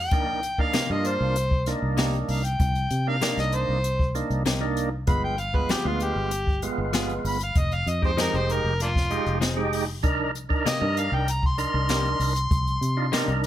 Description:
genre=straight-eighth soul blues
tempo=97 BPM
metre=4/4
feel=straight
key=C minor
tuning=A4 = 440 Hz
part: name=overdriven harmonica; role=melody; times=0.0-13.4 s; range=Bb3 to C6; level=-28 LUFS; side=left 1 dB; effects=plate reverb
part: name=fingered electric bass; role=bass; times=0.0-13.5 s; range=F1 to C3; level=-27 LUFS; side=equal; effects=none
part: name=percussive tonewheel organ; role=accompaniment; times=0.1-13.5 s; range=Ab3 to Bb4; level=-28 LUFS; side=right 3 dB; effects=slow rotary speaker
part: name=jazz brush drum kit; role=drums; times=0.1-13.5 s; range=hi-hat, kick drum, snare drum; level=-27 LUFS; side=equal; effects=none
part: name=direct-recorded clean electric guitar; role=stabs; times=0.7-13.3 s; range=C3 to Ab4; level=-29 LUFS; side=left 5 dB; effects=none
room=light reverb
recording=none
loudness=-22 LUFS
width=side -12 dB against mid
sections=0.0-13.5 A section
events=harmonica solo 0.0-13.5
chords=0.1 Cm7; 5.1 G7b9; 7.6 Fm7; 10.0 Cm7

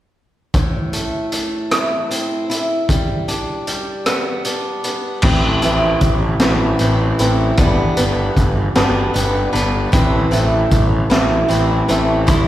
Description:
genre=quiet-loud alternative rock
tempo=51 BPM (dotted quarters)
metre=6/8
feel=straight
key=A minor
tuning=A4 = 440 Hz
part: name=picked swing-style acoustic guitar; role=arpeggios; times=0.5-12.5 s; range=A2 to C5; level=-19 LUFS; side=right 1 dB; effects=slapback echo
part: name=raw garage drum kit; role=drums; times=0.5-12.5 s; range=crash cymbal, hi-hat, kick drum, rim click, snare drum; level=-18 LUFS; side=equal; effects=none
part: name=fuzz picked electric bass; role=bass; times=5.2-12.5 s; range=G1 to C2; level=-17 LUFS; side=equal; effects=overdrive
room=little or no reverb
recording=live gig heard through the venue's PA, recital hall reverb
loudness=-14 LUFS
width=side -13 dB against mid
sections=0.5-5.2 A section; 5.2-12.5 B section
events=none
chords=0.5 Am; 2.9 G; 5.2 Amadd9; 7.6 G; 9.9 Amadd9

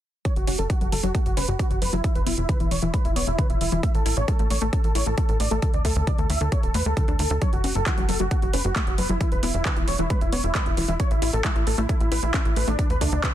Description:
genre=uplifting trance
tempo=134 BPM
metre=4/4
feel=straight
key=F# minor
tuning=A4 = 444 Hz
part: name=dense compressed supersaw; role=melody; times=0.3-13.3 s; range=D4 to E5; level=-28 LUFS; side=right 1 dB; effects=sidechain pumping, low-pass filter, digital delay
part: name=wide unison pluck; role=arpeggios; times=0.3-13.3 s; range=D2 to E4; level=-30 LUFS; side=left 3 dB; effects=sidechain pumping, tape echo
part: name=big-room dance drum kit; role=drums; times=0.3-13.3 s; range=handclaps, hi-hat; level=-30 LUFS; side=right 1 dB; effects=overdrive
part: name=electronic kick drum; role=drums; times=0.3-13.3 s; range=none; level=-24 LUFS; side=equal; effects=overdrive
part: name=tight sequencer bass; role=bass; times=0.4-13.2 s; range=D1 to E2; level=-26 LUFS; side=equal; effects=sidechain pumping
room=little or no reverb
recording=dense, heavily limited modern master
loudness=-21 LUFS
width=side -12 dB against mid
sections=0.3-13.3 A section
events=filter sweep on synth arpeggio sound 0.3-13.3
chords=0.3 F#m; 2.0 E5; 3.8 A; 5.6 D5; 7.4 F#m; 9.2 E5; 11.0 A5; 12.8 D5

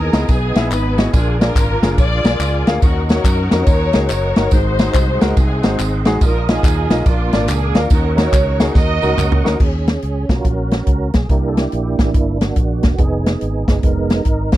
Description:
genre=uptempo gospel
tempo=142 BPM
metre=4/4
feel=swing 64% on 8ths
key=Eb minor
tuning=A4 = 441 Hz
part: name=dark studio string section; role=melody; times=0.0-9.6 s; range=Bb3 to Eb5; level=-21 LUFS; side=equal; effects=none
part: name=warm grand piano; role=accompaniment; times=0.0-9.6 s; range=Ab2 to F5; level=-22 LUFS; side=left 2 dB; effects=none
part: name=tonewheel organ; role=sustained chords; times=0.0-14.6 s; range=Gb3 to D#6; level=-24 LUFS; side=right 4 dB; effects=slow rotary speaker, overdrive, chorus vibrato
part: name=fingered electric bass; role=bass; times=0.0-14.6 s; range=E1 to Gb2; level=-19 LUFS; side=equal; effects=none
part: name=natural country drum kit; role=drums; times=0.1-14.6 s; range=crash cymbal, hi-hat, kick drum, ride cymbal, snare drum, toms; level=-15 LUFS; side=equal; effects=none
part: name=tambourine and handclaps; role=percussion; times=0.1-9.5 s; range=none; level=-30 LUFS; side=left 3 dB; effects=none
room=little or no reverb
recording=dry, close 1970s-style studio recording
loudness=-13 LUFS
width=side -14 dB against mid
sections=0.0-9.6 A section; 9.6-14.6 B section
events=drum fill 8.8-9.6; tonewheel organ solo 9.6-14.6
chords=0.0 Emaj7; 1.1 Bb7; 2.8 Ebm7; 4.5 Ab7; 6.2 Bbsus4; 7.1 Bb; 7.9 Ebm7; 11.3 C7; 13.0 Fm7b5

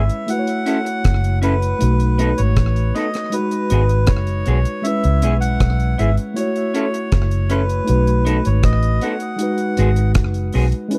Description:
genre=lovers rock reggae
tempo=79 BPM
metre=4/4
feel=straight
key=unclear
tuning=A4 = 440 Hz
part: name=melodica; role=melody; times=0.0-10.1 s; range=B4 to F#5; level=-27 LUFS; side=equal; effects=tape echo
part: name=mellow tine electric piano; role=accompaniment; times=0.0-11.0 s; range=G#3 to C#5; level=-25 LUFS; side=equal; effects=slapback echo
part: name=vintage muted fingered electric bass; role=bass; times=0.0-10.7 s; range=F#1 to C#2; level=-19 LUFS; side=equal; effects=none
part: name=deep reggae drum kit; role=drums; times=0.1-11.0 s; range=hi-hat, kick drum, rim click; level=-22 LUFS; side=equal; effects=none
part: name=electric guitar through a small old amp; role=stabs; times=0.7-10.6 s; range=B3 to A4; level=-25 LUFS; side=equal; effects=none
room=studio reverb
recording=dry, close 1970s-style studio recording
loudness=-18 LUFS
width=mono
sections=0.0-11.0 A section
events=none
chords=0.3 F#m7; 1.8 B7; 3.3 G#m7; 4.8 C#m7; 6.4 F#m7; 7.9 B7; 9.4 G#m7

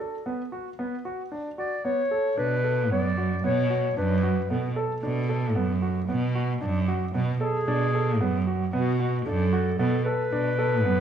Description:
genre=contemporary instrumental, chamber music in an uneven meter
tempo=113 BPM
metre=5/4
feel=straight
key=B dorian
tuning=A4 = 440 Hz
part: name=clear concert grand piano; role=arpeggios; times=0.0-11.0 s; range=B3 to A4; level=-30 LUFS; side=right 2 dB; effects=none
part: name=mellow clarinet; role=melody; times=1.6-11.0 s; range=F#4 to D5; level=-28 LUFS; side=left 2 dB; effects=none
part: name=clear cello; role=bass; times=2.4-11.0 s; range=F#2 to B2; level=-25 LUFS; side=right 2 dB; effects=none
room=moderate recital hall reverb, RT60 1.6 s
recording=worn, warbling old tape, cassette tape, warbly pitch drift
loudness=-23 LUFS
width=side -8 dB against mid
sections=0.0-11.0 A section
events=none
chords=0.0 B7(no3)

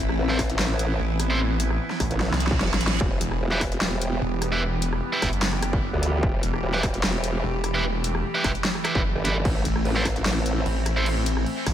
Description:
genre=heavy wobble dubstep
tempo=149 BPM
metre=4/4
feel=half-time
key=E minor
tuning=A4 = 441 Hz
part: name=evolving wavetable pad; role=sustained chords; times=0.0-11.7 s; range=E3 to G4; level=-30 LUFS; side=equal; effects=chorus, built-in reverb, phaser, sidechain pumping
part: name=snarling distorted saw bass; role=bass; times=0.0-11.7 s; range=E1 to C2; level=-26 LUFS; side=equal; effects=distortion, overdrive
part: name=dubstep drum kit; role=drums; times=0.1-11.7 s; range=crash cymbal, handclaps, hi-hat, rim click, snare drum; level=-29 LUFS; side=equal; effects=none
part: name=formant-sweep wobble bass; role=bass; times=0.2-10.6 s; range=E1 to D2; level=-25 LUFS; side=equal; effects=chorus, overdrive
part: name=distorted electric guitar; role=stabs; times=0.3-11.1 s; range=E4 to C5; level=-29 LUFS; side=right 2 dB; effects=overdrive, digital delay
part: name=electronic kick drum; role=drums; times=0.4-11.7 s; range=none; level=-28 LUFS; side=equal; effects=distortion
part: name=reverse cymbal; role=sound effects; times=2.3-3.0 s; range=none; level=-33 LUFS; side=right 5 dB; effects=none
room=digital ambience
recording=none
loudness=-22 LUFS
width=side -10 dB against mid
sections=0.0-11.7 A section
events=drum fill 2.2-3.0; reverse cymbal 2.3-3.0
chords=0.0 Am; 3.0 Em; 9.5 Am

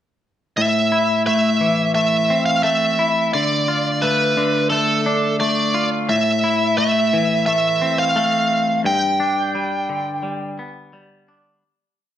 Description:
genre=post-rock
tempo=87 BPM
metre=4/4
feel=straight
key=A minor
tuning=A4 = 440 Hz
part: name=biting lead guitar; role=melody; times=0.6-10.9 s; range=A4 to G5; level=-18 LUFS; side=right 1 dB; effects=overdrive, slapback echo
part: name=twangy electric guitar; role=arpeggios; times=0.6-11.6 s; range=G2 to F4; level=-20 LUFS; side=left 2 dB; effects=slapback echo
room=moderate recital hall reverb, RT60 1.5 s, digital ambience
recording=none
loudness=-16 LUFS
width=side -11 dB against mid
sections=0.6-11.6 A section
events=fade-out 8.9-11.6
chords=0.6 Am; 3.3 Dm; 6.1 Am; 8.9 G

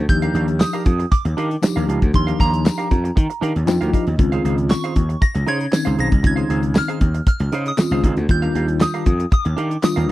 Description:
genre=early-eighties boogie funk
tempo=117 BPM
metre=4/4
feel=straight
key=unclear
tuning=A4 = 442 Hz
part: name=gritty slap bass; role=bass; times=0.0-10.1 s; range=Cb2 to Eb3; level=-20 LUFS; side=equal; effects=overdrive
part: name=soft synth bell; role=melody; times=0.1-10.1 s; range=Bb5 to Bb6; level=-26 LUFS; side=right 1 dB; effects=chorus, phaser, slapback echo
part: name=mellow tine electric piano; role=accompaniment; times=0.1-10.1 s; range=Eb3 to G5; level=-22 LUFS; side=left 2 dB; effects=medium stereo tremolo
part: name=semi-hollow electric guitar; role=riff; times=0.1-10.1 s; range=D4 to F5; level=-28 LUFS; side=right 7 dB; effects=lush chorus
part: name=damped 70s drum kit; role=drums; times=0.1-10.1 s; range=handclaps, hi-hat, kick drum, snare drum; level=-17 LUFS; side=equal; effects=none
part: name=tambourine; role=percussion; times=0.6-10.0 s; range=none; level=-35 LUFS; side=left 11 dB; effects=none
room=little or no reverb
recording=dry, close 1970s-style studio recording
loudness=-16 LUFS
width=side -16 dB against mid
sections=0.0-10.1 A section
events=tine electric piano fill 3.4-4.2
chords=0.1 Ebmaj9; 4.2 Dbmaj9; 8.3 Ebmaj9

